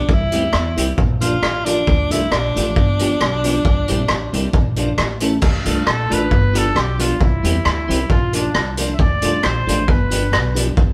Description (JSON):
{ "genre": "ska", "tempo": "135 BPM", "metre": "4/4", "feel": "swing 53% on 8ths", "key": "D minor", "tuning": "A4 = 440 Hz", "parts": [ { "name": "bright tenor saxophone", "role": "melody", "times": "0.0-5.0 s", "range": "D4 to F4", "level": "-25 LUFS", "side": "equal", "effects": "none" }, { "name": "clean electric guitar", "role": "accompaniment", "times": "0.0-10.7 s", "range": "F3 to A4", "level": "-27 LUFS", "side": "equal", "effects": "none" }, { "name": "upright bass", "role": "bass", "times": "0.0-10.9 s", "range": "G1 to E2", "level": "-24 LUFS", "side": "equal", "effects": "none" }, { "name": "raw garage drum kit", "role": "drums", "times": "0.1-10.9 s", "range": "crash cymbal, hi-hat, kick drum, rim click", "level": "-21 LUFS", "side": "equal", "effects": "none" }, { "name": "tonewheel organ", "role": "stabs", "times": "0.3-10.7 s", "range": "C4 to D5", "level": "-30 LUFS", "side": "equal", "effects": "chorus vibrato, slow rotary speaker" }, { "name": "warm trumpet", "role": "melody", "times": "5.9-10.6 s", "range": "D4 to E5", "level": "-25 LUFS", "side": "equal", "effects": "none" } ], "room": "moderate stone room reverb, RT60 1.1 s", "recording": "band playing live in one room", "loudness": "-17 LUFS", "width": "mono", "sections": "0.0-5.4 A section; 5.4-10.9 B section", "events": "trumpet solo 5.4-10.9", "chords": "0.1 C; 1.0 Bb; 1.9 Dm; 2.8 G7; 3.7 C; 4.5 Bb; 5.0 A; 5.4 Dm; 6.3 G7; 7.2 C; 8.1 Bb; 9.0 Dm; 9.9 G7" }